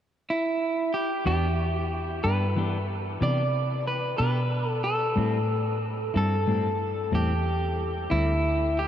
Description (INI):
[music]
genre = blues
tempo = 61 BPM (dotted quarters)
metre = 12/8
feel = straight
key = E minor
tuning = A4 = 440 Hz
[part]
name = electric guitar at the edge of break-up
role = melody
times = 0.3-8.9 s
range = E4 to D5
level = -27 LUFS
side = equal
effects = diffuse ambient delay
[part]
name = semi-hollow electric guitar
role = accompaniment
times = 1.3-8.3 s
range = A2 to G4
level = -32 LUFS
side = left 2 dB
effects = harmonic tremolo
[part]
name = vintage muted fingered electric bass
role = bass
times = 1.3-8.9 s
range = D2 to C3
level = -27 LUFS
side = equal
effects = none
[sound]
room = wet huge ambient reverb, RT60 9.3 s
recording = dreamy mix soaked in reverb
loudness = -24 LUFS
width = side -10 dB against mid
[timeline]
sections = 0.0-1.3 A section; 1.3-8.9 B section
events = none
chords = 0.0 N.C.; 1.3 Em7; 5.2 Am7